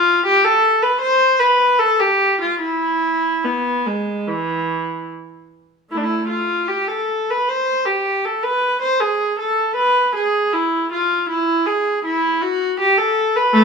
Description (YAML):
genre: classical, baroque-style suite movement for unaccompanied viola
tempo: 71-81 BPM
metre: 4/4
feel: rubato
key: A minor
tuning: A4 = 439 Hz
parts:
  - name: rich viola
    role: solo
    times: 0.0-13.6 s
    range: E3 to C5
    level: -15 LUFS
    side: equal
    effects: none
room: wet stone room reverb, RT60 1.1 s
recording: minimal, uncompressed stereo recording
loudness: -16 LUFS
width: side -5 dB against mid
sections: 0.0-13.6 A section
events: none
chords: none